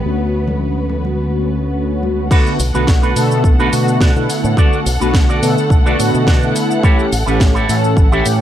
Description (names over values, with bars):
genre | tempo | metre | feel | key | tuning
nu-disco, nu disco | 106 BPM | 4/4 | straight | B minor | A4 = 440 Hz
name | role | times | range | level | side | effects
mellow synth brass | accompaniment | 0.0-8.4 s | D3 to A4 | -17 LUFS | left 1 dB | chorus, sidechain pumping, analog delay
dark chamber string section | sustained chords | 0.0-8.4 s | B3 to F#5 | -25 LUFS | left 1 dB | sidechain pumping
fingered electric bass with an envelope filter | bass | 0.0-8.4 s | A1 to B2 | -18 LUFS | equal | sidechain pumping
congas | percussion | 0.5-2.1 s | none | -26 LUFS | left 2 dB | none
electric guitar with an envelope filter | riff | 2.3-8.3 s | D4 to E5 | -22 LUFS | right 3 dB | wide subtle chorus, analog delay
electronic kick drum | drums | 2.3-8.1 s | none | -12 LUFS | equal | none
house drum kit | drums | 2.3-8.4 s | crash cymbal, hi-hat, shaker, snare drum | -23 LUFS | equal | low-pass filter on cymbals, low-pass filter on perc, low-pass filter on hats, low-pass filter on snare
room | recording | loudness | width
digital ambience | none | -12 LUFS | side -11 dB against mid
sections
0.0-2.3 A section; 2.3-8.4 B section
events
drop 2.3-8.4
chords
0.0 Dmaj7; 2.3 Bm7; 6.8 A7